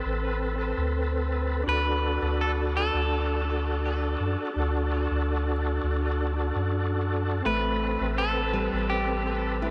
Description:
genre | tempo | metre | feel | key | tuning
trip hop | 83 BPM | 4/4 | straight | A dorian | A4 = 439 Hz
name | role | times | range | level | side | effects
overdriven tonewheel organ | accompaniment | 0.0-9.7 s | C4 to B4 | -32 LUFS | equal | chorus vibrato, fast rotary speaker, harmonic tremolo, vintage 12-bit sampler grit, tape echo
soft dub sub bass | bass | 0.1-9.7 s | A1 to F#2 | -30 LUFS | equal | none
clean electric guitar | melody | 1.7-9.7 s | G4 to B4 | -34 LUFS | equal | vintage 12-bit sampler grit, tape echo
flamenco guitar | arpeggios | 7.5-9.7 s | G3 to E4 | -35 LUFS | equal | diffuse ambient delay
room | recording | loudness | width
moderate huge ambient reverb, RT60 7.5 s | dreamy mix soaked in reverb, vinyl crackle | -27 LUFS | mono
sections
0.0-7.5 A section; 7.5-9.7 B section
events
none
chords
0.0 Amadd9; 1.7 D; 7.5 Amadd9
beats
0.22 0.94 | 1.67 2.39 3.11 3.84 | 4.56 5.28 6.00 6.73 | 7.45 8.17 8.90 9.62

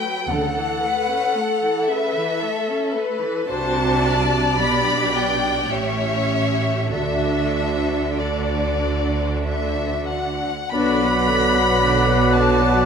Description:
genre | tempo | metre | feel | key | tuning
classical, slow romantic movement for symphony orchestra | 42-58 BPM | 3/4 | rubato | D major | A4 = 439 Hz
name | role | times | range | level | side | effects
rich chamber violin section | melody | 0.0-12.9 s | D5 to B5 | -23 LUFS | left 3 dB | none
rich chamber violin section | second line | 0.0-12.9 s | F#4 to F#5 | -27 LUFS | left 4 dB | none
rich chamber viola section | accompaniment | 0.0-12.9 s | C#3 to A4 | -25 LUFS | right 1 dB | none
clear studio double bass section | bass | 0.3-12.9 s | A1 to D2 | -25 LUFS | right 4 dB | none
rich studio cello section | bass | 0.3-12.9 s | A2 to D3 | -25 LUFS | right 3 dB | none
flute section | second line | 10.7-12.9 s | F#6 | -26 LUFS | left 3 dB | none
mellow oboe | second line | 10.7-12.9 s | D5 | -24 LUFS | right 2 dB | none
warm clarinet | second line | 10.7-12.9 s | B4 | -28 LUFS | left 10 dB | none
mellow bassoon | accompaniment | 10.7-12.9 s | F#3 | -24 LUFS | right 3 dB | none
dark French horn section | sustained chords | 10.7-11.2 s | B3 to D4 | -24 LUFS | left 6 dB | none
room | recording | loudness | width
moderate scoring stage reverb, RT60 1.9 s | minimal, uncompressed stereo recording | -18 LUFS | side -6 dB against mid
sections
0.0-10.7 A section; 10.7-12.9 B section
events
none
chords
0.3 A/D; 3.5 D7/C; 4.6 G/B; 5.7 A7; 6.9 D; 10.7 Bm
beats
| 0.29 1.36 2.42 | 3.49 4.56 5.69 | 6.91 8.16 9.41 | 10.72 11.81

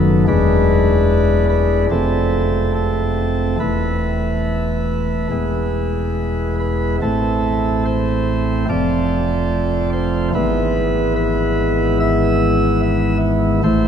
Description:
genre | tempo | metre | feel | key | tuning
classical, chorale-style piece for pipe organ | 72 BPM | 4/4 | rubato | unclear | A4 = 436 Hz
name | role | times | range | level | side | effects
chamber organ, principal chorus | solo | 0.0-13.9 s | E1 to E5 | -15 LUFS | equal | none
room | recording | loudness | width
wet cathedral reverb, RT60 6.3 s | none | -15 LUFS | side -8 dB against mid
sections
0.0-13.9 A section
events
none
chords
0.3 E7; 1.9 F; 3.6 Esus4; 5.3 E; 7.0 Am; 8.7 F; 10.3 E/G#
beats
| 0.28 1.08 1.91 2.74 | 3.59 4.45 5.31 6.17 | 7.02 7.86 8.69 9.51 | 10.34 11.16 12.01 12.83 | 13.64

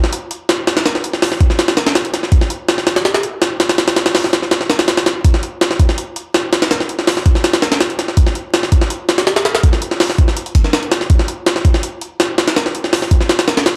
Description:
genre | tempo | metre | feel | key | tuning
drum and bass | 164 BPM | 4/4 | straight | none | none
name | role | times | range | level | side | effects
jungle sampler-style drum kit | drums | 0.0-13.8 s | hi-hat, kick drum, snare drum | -15 LUFS | equal | none
room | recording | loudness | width
light reverb | dry, gritty hardware recording, vinyl crackle | -15 LUFS | mono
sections
0.0-13.8 A section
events
none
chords
none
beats
0.12 0.49 | 0.85 1.22 1.59 1.95 | 2.32 2.68 3.05 3.42 | 3.78 4.15 4.51 4.88 | 5.25 5.61 5.98 6.34 | 6.71 7.08 7.44 7.81 | 8.17 8.54 8.90 9.27 | 9.64 10.00 10.37 10.73 | 11.10 11.46 11.83 12.20 | 12.56 12.93 13.29 13.66

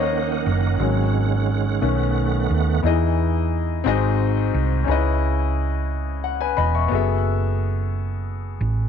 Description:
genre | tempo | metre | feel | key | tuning
gospel | 59 BPM (dotted quarters) | 6/8 | straight | E major | A4 = 439 Hz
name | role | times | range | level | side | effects
warm concert grand piano | accompaniment | 0.0-8.9 s | G#2 to C#6 | -24 LUFS | left 12 dB | none
bright tonewheel organ | sustained chords | 0.0-2.8 s | Eb3 to Gb5 | -24 LUFS | right 13 dB | slow rotary speaker, chorus vibrato
hollow-body short-scale fingered electric bass | bass | 0.0-8.9 s | E1 to E2 | -21 LUFS | right 2 dB | none
room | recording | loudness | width
light reverb, small room ambience | 1960s-style stereo with parts hard left and right | -19 LUFS | side -7 dB against mid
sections
0.0-2.8 A section; 2.8-8.9 B section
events
grand piano solo 0.0-2.8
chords
0.0 Ebm7; 0.8 Ab7sus4; 1.8 Cb7; 2.8 Emaj7; 3.9 G#7; 4.9 C#m9; 6.9 F#m11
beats
| 0.80 1.82 | 2.85 3.86 | 4.88 5.90 | 6.92 7.93

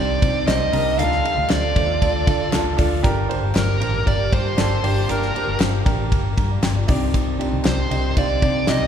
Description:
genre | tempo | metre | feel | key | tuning
piano-driven pop | 117 BPM | 4/4 | straight | G minor | A4 = 440 Hz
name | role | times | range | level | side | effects
bluesy overdriven lead guitar | melody | 0.0-8.9 s | Bb4 to F5 | -23 LUFS | right 2 dB | distortion
dark baby grand piano | accompaniment | 0.0-8.9 s | G2 to Bb5 | -25 LUFS | right 1 dB | none
dark studio string section | sustained chords | 0.0-8.9 s | C3 to A4 | -33 LUFS | left 1 dB | none
vintage muted fingered electric bass | bass | 0.0-8.9 s | G1 to D3 | -23 LUFS | left 1 dB | none
damped 70s drum kit | drums | 0.2-8.8 s | hi-hat, kick drum, ride cymbal, snare drum | -22 LUFS | equal | none
group handclap | percussion | 0.5-8.8 s | none | -37 LUFS | left 3 dB | none
room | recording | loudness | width
wet church reverb, RT60 3.7 s | recorded in a church or concert hall | -17 LUFS | side -8 dB against mid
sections
0.0-8.9 A section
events
grand piano fill 6.1-7.1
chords
0.0 Cmadd9; 1.0 Dm; 3.0 Gm; 6.9 Cmadd9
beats
0.48 | 0.99 1.50 2.02 2.53 | 3.04 3.55 4.07 4.58 | 5.09 5.60 6.12 6.63 | 7.14 7.65 8.17 8.68

